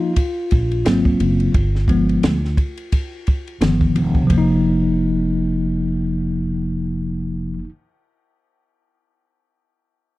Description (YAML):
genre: hip hop, jazz-hop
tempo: 87 BPM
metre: 4/4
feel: swing 57% on 16ths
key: F minor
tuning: A4 = 440 Hz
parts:
  - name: mellow tine electric piano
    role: accompaniment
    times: 0.0-7.7 s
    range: C3 to F4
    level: -19 LUFS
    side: left 1 dB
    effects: medium stereo tremolo
  - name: compact cocktail drum kit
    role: drums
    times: 0.2-4.5 s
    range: hi-hat, kick drum, ride cymbal, snare drum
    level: -18 LUFS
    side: equal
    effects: none
  - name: upright bass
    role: bass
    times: 0.5-7.6 s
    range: E1 to D2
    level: -22 LUFS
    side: equal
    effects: none
room: little or no reverb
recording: dry, close 1970s-style studio recording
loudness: -16 LUFS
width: side -18 dB against mid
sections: 0.0-4.3 A section; 4.3-7.1 B section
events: tine electric piano solo 0.0-4.3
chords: 0.0 Db69 (rootless); 0.9 Ab9; 1.5 G7b9; 3.6 Gaug7; 4.3 F5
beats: 0.16 0.85 | 1.54 2.23 2.92 3.61 | 4.30 4.99 5.68 6.37